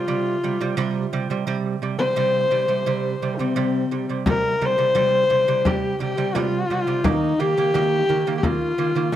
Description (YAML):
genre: mongolian traditional, Mongolian folk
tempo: 86 BPM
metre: 4/4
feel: straight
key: C yu mode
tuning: A4 = 439 Hz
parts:
  - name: rich horsehead fiddle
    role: melody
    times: 0.0-9.2 s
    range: C4 to C5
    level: -21 LUFS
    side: left 2 dB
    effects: plate reverb
  - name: lute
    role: arpeggios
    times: 0.0-9.2 s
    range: C3 to Bb3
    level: -24 LUFS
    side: right 6 dB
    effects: plate reverb, analog delay
  - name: frame drum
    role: percussion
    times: 4.3-9.2 s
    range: none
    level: -24 LUFS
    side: left 2 dB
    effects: none
room: wet studio reverb, RT60 0.5 s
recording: dark, warm production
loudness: -19 LUFS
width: side -11 dB against mid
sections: 0.0-4.3 A section; 4.3-9.2 B section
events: none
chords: 0.0 C5; 7.0 Eb5